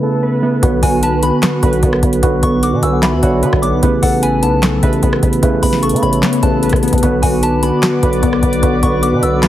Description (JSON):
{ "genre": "hip hop, trap", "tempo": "150 BPM", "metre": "4/4", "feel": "half-time", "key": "B minor", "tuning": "A4 = 440 Hz", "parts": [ { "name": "mellow tine electric piano", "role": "accompaniment", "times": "0.0-9.5 s", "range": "C#3 to G#5", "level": "-16 LUFS", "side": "right 2 dB", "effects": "wide subtle chorus" }, { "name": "warbly lo-fi synth keys", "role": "arpeggios", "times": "0.0-9.5 s", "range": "B3 to B4", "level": "-19 LUFS", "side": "left 2 dB", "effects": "chorus, tape echo" }, { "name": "growling 808-style bass", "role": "bass", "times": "0.6-9.5 s", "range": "A1 to D3", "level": "-19 LUFS", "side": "equal", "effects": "none" }, { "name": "booming analog drum machine", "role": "drums", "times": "0.6-9.5 s", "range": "handclaps, hi-hat, kick drum, rim click, snare drum", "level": "-16 LUFS", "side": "equal", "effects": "none" }, { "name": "soft synth bell", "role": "second line", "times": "0.8-9.5 s", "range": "F#5 to E6", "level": "-22 LUFS", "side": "left 2 dB", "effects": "chorus, tape echo" }, { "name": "warbly tape-like pad", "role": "sustained chords", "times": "7.5-9.5 s", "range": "B4 to D6", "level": "-24 LUFS", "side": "left 1 dB", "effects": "chorus, built-in reverb" } ], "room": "light reverb", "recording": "heavily compressed radio sound, multiband compression, low-pass filter", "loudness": "-11 LUFS", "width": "side -12 dB against mid", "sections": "0.6-9.5 A section", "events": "none", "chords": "0.0 Aadd9; 0.6 Bm; 3.8 Aadd9; 7.0 Bm" }